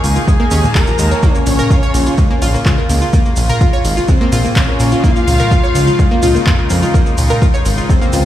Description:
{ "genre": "melodic techno", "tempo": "126 BPM", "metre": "4/4", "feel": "straight", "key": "Bb minor", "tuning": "A4 = 441 Hz", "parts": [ { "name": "rich chamber string section", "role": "sustained chords", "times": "0.0-8.2 s", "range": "Db3 to Ab4", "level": "-22 LUFS", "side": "left 1 dB", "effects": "sidechain pumping" }, { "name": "fat analog bass", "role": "bass", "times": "0.0-8.2 s", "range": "Eb1 to F2", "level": "-15 LUFS", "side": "equal", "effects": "sidechain pumping" }, { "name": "deep house drum kit", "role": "drums", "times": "0.0-8.2 s", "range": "handclaps, hi-hat, ride cymbal, toms", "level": "-22 LUFS", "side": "equal", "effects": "none" }, { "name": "cabasa", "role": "percussion", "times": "0.0-8.2 s", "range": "none", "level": "-30 LUFS", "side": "right 2 dB", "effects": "none" }, { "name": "analog pluck", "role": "arpeggios", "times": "0.2-8.2 s", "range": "F3 to Db5", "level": "-19 LUFS", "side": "equal", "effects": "chorus, sidechain pumping, ping-pong delay" }, { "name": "wide unison lead", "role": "melody", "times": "0.3-8.2 s", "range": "C4 to Bb4", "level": "-20 LUFS", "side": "left 1 dB", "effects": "sidechain pumping, tape echo" }, { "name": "rich chamber violin section", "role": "second line", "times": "0.3-8.2 s", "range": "C5 to Bb5", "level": "-26 LUFS", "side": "equal", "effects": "sidechain pumping, ping-pong delay" }, { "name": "electronic kick drum", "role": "drums", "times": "0.3-8.0 s", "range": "none", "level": "-13 LUFS", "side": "equal", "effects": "none" } ], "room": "light reverb", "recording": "played on a big sound system in a bare room, stone room reverb", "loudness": "-10 LUFS", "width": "side -12 dB against mid", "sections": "0.0-8.2 A section", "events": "none", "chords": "0.0 Ebsus4; 1.2 Bbm; 5.0 Db", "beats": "0.28 0.75 | 1.23 1.71 2.18 2.66 | 3.13 3.61 4.08 4.56 | 5.04 5.51 5.99 6.47 | 6.94 7.42 7.89" }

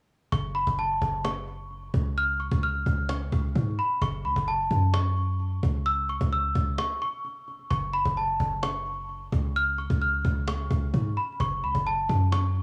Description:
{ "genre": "hip hop, trap", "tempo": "130 BPM", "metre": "4/4", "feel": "half-time", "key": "F# minor", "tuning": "A4 = 441 Hz", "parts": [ { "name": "celesta", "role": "melody", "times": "0.3-12.6 s", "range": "A5 to E#6", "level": "-31 LUFS", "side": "equal", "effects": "digital delay" }, { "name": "warm 808-style bass", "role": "bass", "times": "0.3-12.6 s", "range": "F#1 to G#2", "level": "-30 LUFS", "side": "equal", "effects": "none" }, { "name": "cajon", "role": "drums", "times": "0.3-12.6 s", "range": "none", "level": "-35 LUFS", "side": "equal", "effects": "none" } ], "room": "small room ambience", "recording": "worn, warbling old tape, cassette tape, warbly pitch drift", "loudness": "-27 LUFS", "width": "mono", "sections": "0.3-12.6 A section", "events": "break 6.8-7.7", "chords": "0.3 F#m; 2.2 C#; 4.0 F#m; 5.9 C#m; 7.7 F#m; 9.6 C#; 11.4 F#m", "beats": "| 0.32 0.79 1.25 1.71 | 2.17 2.63 3.09 3.55 | 4.02 4.48 4.94 5.40 | 5.86 6.32 6.79 7.25 | 7.71 8.17 8.63 9.09 | 9.55 10.02 10.48 10.94 | 11.40 11.86 12.32" }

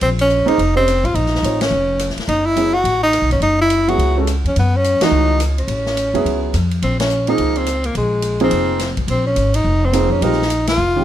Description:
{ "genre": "modal jazz", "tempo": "212 BPM", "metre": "4/4", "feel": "swing 61% on 8ths", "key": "unclear", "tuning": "A4 = 440 Hz", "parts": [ { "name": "breathy tenor saxophone", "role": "melody", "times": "0.0-11.0 s", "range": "Ab3 to Gb4", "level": "-17 LUFS", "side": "equal", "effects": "plate reverb" }, { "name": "upright bass", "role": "bass", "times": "0.0-11.0 s", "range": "F1 to Gb2", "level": "-19 LUFS", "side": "equal", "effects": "none" }, { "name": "swinging big-band drum kit", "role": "drums", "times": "0.0-10.7 s", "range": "hi-hat, kick drum, ride cymbal, rim click, snare drum", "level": "-27 LUFS", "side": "left 2 dB", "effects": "none" }, { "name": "warm upright piano", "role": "accompaniment", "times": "0.5-11.0 s", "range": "Eb3 to Eb5", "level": "-19 LUFS", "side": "right 3 dB", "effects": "none" } ], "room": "light reverb", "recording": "none", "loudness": "-14 LUFS", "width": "side -11 dB against mid", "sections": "0.0-11.0 A section", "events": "band accent 1.6, 5.0, 7.0, 10.6", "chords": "0.0 Bbmadd9; 2.3 Gbm11; 6.8 Bbm11", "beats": "| 0.02 0.30 0.58 0.87 | 1.15 1.44 1.72 2.00 | 2.29 2.57 2.85 3.14 | 3.42 3.70 3.99 4.27 | 4.55 4.84 5.12 5.40 | 5.69 5.97 6.25 6.54 | 6.82 7.10 7.39 7.67 | 7.95 8.23 8.52 8.80 | 9.08 9.37 9.65 9.93 | 10.22 10.50 10.78" }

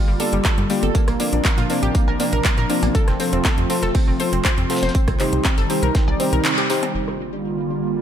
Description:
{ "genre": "progressive house", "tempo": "120 BPM", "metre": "4/4", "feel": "straight", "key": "G minor", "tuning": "A4 = 444 Hz", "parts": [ { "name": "airy breathy pad", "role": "sustained chords", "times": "0.0-8.0 s", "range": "C3 to F4", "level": "-25 LUFS", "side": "right 1 dB", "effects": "chorus, sidechain pumping" }, { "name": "analog pluck", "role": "arpeggios", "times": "0.0-6.9 s", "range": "G3 to D5", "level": "-25 LUFS", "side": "right 1 dB", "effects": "chorus, sidechain pumping, digital delay" }, { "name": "tight sequencer bass", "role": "bass", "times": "0.1-8.0 s", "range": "F1 to Bb2", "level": "-24 LUFS", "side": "equal", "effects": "sidechain pumping" }, { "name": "deep mellow chord stab", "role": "stabs", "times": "0.2-7.9 s", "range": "Bb3 to D5", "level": "-26 LUFS", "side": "left 3 dB", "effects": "chorus, sidechain pumping, digital delay" }, { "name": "big-room dance drum kit", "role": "drums", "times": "0.2-7.2 s", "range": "handclaps, hi-hat, rim click", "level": "-25 LUFS", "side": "equal", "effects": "low-pass filter on hats, low-pass filter on snare" }, { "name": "breakbeat sampler-style drum kit", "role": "drums", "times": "0.2-6.8 s", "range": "hi-hat, snare drum, tambourine", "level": "-34 LUFS", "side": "equal", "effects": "none" }, { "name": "congas and cowbell", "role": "percussion", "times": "0.2-6.9 s", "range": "none", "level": "-32 LUFS", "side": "left 5 dB", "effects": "none" }, { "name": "electronic kick drum", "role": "drums", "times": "0.4-6.1 s", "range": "none", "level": "-19 LUFS", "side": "equal", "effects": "none" } ], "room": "light reverb, digital ambience", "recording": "none", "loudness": "-17 LUFS", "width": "side -9 dB against mid", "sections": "0.0-6.9 A section; 6.9-8.0 B section", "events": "band accent 6.4", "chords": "0.0 Gm7; 0.9 Bbadd9; 2.9 F; 4.9 Cm; 6.9 Gm7", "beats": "0.45 | 0.95 1.45 1.95 2.45 | 2.95 3.45 3.95 4.45 | 4.95 5.45 5.95 6.45 | 6.95 7.45 7.95" }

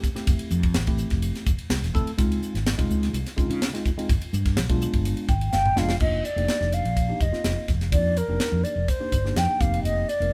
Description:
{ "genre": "electric jazz fusion", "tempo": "125 BPM", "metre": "4/4", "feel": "straight", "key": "unclear", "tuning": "A4 = 440 Hz", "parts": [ { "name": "tine electric piano", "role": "accompaniment", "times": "0.0-10.3 s", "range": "Ab3 to G5", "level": "-33 LUFS", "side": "equal", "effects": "phaser" }, { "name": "tight funk drum kit", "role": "drums", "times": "0.0-10.3 s", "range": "crash cymbal, hi-hat, kick drum, ride cymbal, snare drum, toms", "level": "-28 LUFS", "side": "equal", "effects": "none" }, { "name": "fretless electric bass", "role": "bass", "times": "0.2-10.3 s", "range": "E1 to Db3", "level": "-28 LUFS", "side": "equal", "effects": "none" }, { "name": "mellow hollow concert flute", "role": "melody", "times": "5.5-10.3 s", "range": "Bb4 to G5", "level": "-28 LUFS", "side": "equal", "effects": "none" } ], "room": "light reverb", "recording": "band playing live in one room", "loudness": "-24 LUFS", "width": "mono", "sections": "0.0-6.0 A section; 6.0-10.3 B section", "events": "tine electric piano fill 5.0-6.0; drum fill 5.5-6.0", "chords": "0.0 Fmaj9; 2.2 Dbmaj9; 4.1 G7b9; 6.0 Cm11/F (rootless); 9.6 F9sus4", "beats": "| 0.28 0.75 1.23 1.71 | 2.18 2.66 3.14 3.62 | 4.09 4.57 5.05 5.53 | 6.01 6.49 6.96 7.45 | 7.92 8.40 8.88 9.36 | 9.84 10.32" }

